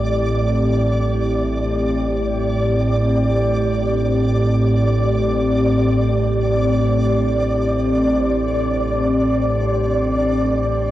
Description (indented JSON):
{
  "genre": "ambient",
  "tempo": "free time",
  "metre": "none",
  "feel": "none",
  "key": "unclear",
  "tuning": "A4 = 440 Hz",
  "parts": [
    { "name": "dark analog pad", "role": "sustained chords", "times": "0.0-10.9 s", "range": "A2 to D5", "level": "-19 LUFS", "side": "equal", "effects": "chorus, shimmer reverb" },
    { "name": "deep rumbling drone", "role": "drone", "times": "0.0-10.9 s", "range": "A1 to A2", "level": "-21 LUFS", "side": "right 1 dB", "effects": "built-in reverb" },
    { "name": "flickering grainy texture", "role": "texture", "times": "0.0-10.9 s", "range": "D5", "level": "-23 LUFS", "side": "equal", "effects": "built-in reverb, shimmer reverb" }
  ],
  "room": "wet huge ambient reverb, RT60 7.7 s",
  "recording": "worn, warbling old tape, cassette tape, warbly pitch drift",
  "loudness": "-16 LUFS",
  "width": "side -14 dB against mid",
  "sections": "0.0-10.9 A section",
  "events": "none",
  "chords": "0.0 Csus2/A"
}